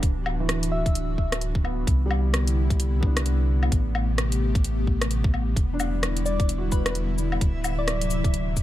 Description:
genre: future garage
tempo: 130 BPM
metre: 4/4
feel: swing 60% on 16ths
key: unclear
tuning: A4 = 438 Hz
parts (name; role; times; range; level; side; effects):
- felt-muted upright piano; accompaniment; 0.0-7.6 s; E3 to F#4; -35 LUFS; left 1 dB; sidechain pumping, dub echo
- airy breathy pad; sustained chords; 0.0-8.6 s; C3 to G4; -31 LUFS; left 1 dB; chorus, vintage 12-bit sampler grit, sidechain pumping
- soft dub sub bass; bass; 0.0-8.6 s; D1 to C2; -25 LUFS; equal; tube saturation, sidechain pumping
- electronic kick drum; drums; 0.0-8.6 s; none; -23 LUFS; equal; none
- garage drum kit; drums; 0.0-8.6 s; cabasa, hi-hat, rim click, woodblock; -29 LUFS; left 1 dB; none
- soft struck synth lead; melody; 0.7-1.4, 6.3-8.4 s; B4 to E5; -33 LUFS; left 2 dB; chorus, digital delay
- backwards swelling texture; texture; 5.9-8.6 s; E5; -40 LUFS; right 1 dB; built-in reverb
room: digital ambience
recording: none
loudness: -22 LUFS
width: side -14 dB against mid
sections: 0.0-8.6 A section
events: none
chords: 0.0 Dadd9; 1.9 Cmaj9; 3.7 Am9; 5.6 Em7; 7.4 D9

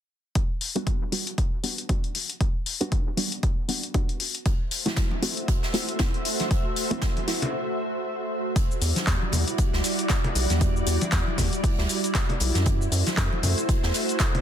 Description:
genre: deep house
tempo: 117 BPM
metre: 4/4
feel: swing 57% on 16ths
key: E minor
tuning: A4 = 439 Hz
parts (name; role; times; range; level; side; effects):
- electronic kick drum; drums; 0.4-14.3 s; none; -25 LUFS; equal; none
- punchy analog drum machine; drums; 0.4-14.4 s; handclaps, hi-hat, shaker; -29 LUFS; left 3 dB; none
- filtered dub chord stab; stabs; 0.8-7.5 s; G3 to F#4; -31 LUFS; right 1 dB; chorus, cassette tape, dub echo
- soft string machine; sustained chords; 4.8-14.4 s; G3 to E5; -29 LUFS; right 1 dB; ensemble chorus, sidechain pumping
- big rock drum kit; drums; 4.5-14.3 s; hi-hat, snare drum; -35 LUFS; right 2 dB; high-pass filter on hats, high-pass filter on snare, high-pass filter on room
- congas; percussion; 4.9-14.4 s; none; -33 LUFS; left 2 dB; none
- rubbery square bass; bass; 8.8-13.9 s; B1 to F#2; -25 LUFS; equal; sidechain pumping
room: light reverb, small room ambience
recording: dense, heavily limited modern master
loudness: -23 LUFS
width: side -10 dB against mid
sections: 0.4-8.6 A section; 8.6-14.4 B section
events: break 7.5-8.6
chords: 0.4 Gmaj7; 4.5 F#m7b5; 8.6 Em9; 12.7 F#m7b5

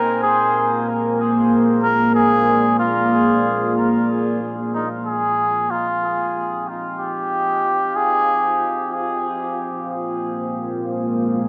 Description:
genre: ambient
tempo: free time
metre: none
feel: none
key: F dorian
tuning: A4 = 440 Hz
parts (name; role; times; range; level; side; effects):
- trumpet with cup mute; melody; 0.0-8.9 s; Eb4 to Bb4; -22 LUFS; equal; dub echo
- deep dark ambient pad; sustained chords; 0.0-11.5 s; Ab3 to Ab5; -23 LUFS; equal; chorus, built-in reverb
room: moderate plate reverb, RT60 2.7 s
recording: echo-heavy mix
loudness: -19 LUFS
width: mono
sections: 0.0-4.4 A section; 4.4-11.5 B section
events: none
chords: 0.0 Bb7; 4.4 Fm9; 9.6 Bb7(no3)

